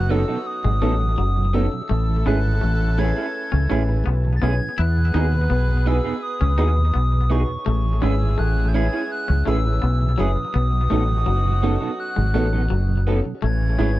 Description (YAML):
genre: reggae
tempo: 83 BPM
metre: 4/4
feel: straight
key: unclear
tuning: A4 = 440 Hz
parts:
  - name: reedy FM lead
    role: melody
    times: 0.0-14.0 s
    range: C#6 to A6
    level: -28 LUFS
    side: equal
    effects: chorus, tape echo
  - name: clear horn section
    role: second line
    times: 0.0-14.0 s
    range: C#3 to B4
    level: -32 LUFS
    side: right 4 dB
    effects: none
  - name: deep dub fingered electric bass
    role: bass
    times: 0.0-14.0 s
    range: F#1 to E2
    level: -19 LUFS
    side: equal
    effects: none
  - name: mellow tonewheel organ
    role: accompaniment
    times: 0.1-14.0 s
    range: E2 to G#4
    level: -29 LUFS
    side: right 8 dB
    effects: slow rotary speaker
  - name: warm grand piano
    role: accompaniment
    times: 0.1-13.9 s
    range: C#4 to B4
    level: -31 LUFS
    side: left 2 dB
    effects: tape echo
  - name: electric guitar through a small old amp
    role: stabs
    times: 0.1-13.9 s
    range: B3 to C#5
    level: -26 LUFS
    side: right 3 dB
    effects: analog chorus
  - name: twangy electric guitar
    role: riff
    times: 0.6-14.0 s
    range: F#3 to E4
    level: -31 LUFS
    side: left 7 dB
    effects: tape echo
room: little or no reverb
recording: dry, close 1970s-style studio recording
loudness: -18 LUFS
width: side -16 dB against mid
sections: 0.0-14.0 A section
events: none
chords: 0.0 B7; 1.9 Amaj7; 4.8 Emaj7; 7.7 Amaj7; 10.5 B7; 13.4 Amaj7